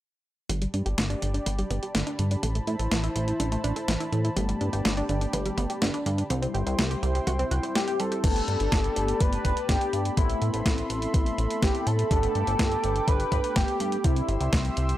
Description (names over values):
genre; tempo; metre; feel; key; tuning
italo disco; 124 BPM; 4/4; straight; G major; A4 = 440 Hz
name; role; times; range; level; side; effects
warm analog pad; sustained chords; 0.5-15.0 s; E4 to E6; -34 LUFS; equal; chorus
analog pluck; arpeggios; 0.5-8.2 s; D3 to C5; -32 LUFS; right 2 dB; chorus, analog delay
chorused synth bass; bass; 0.5-14.9 s; G1 to A2; -28 LUFS; equal; none
clean 12-bit digital drum machine; drums; 0.5-15.0 s; crash cymbal, hi-hat, snare drum; -31 LUFS; equal; overdrive
electronic kick drum; drums; 0.5-14.6 s; none; -26 LUFS; equal; overdrive, high-pass filter on kick, high-pass filter on room
chorused polysynth; stabs; 4.4-15.0 s; G3 to C5; -34 LUFS; left 4 dB; none
wide unison lead; melody; 7.8-14.5 s; E4 to B4; -29 LUFS; equal; wide subtle chorus, analog delay
room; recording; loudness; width
little or no reverb; dry, gritty hardware recording; -24 LUFS; side -14 dB against mid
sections
0.5-8.2 A section; 8.2-15.0 B section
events
filter sweep on synth arpeggio sound 0.5-8.2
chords
0.5 Gadd9; 2.4 Amadd9; 4.4 Gadd9; 6.3 C; 8.2 Gadd9; 10.2 Amadd9; 12.1 Gadd9; 14.0 C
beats
| 0.50 0.98 1.46 1.95 | 2.43 2.92 3.40 3.88 | 4.37 4.85 5.33 5.82 | 6.30 6.79 7.27 7.75 | 8.24 8.72 9.21 9.69 | 10.17 10.66 11.14 11.62 | 12.11 12.59 13.08 13.56 | 14.04 14.53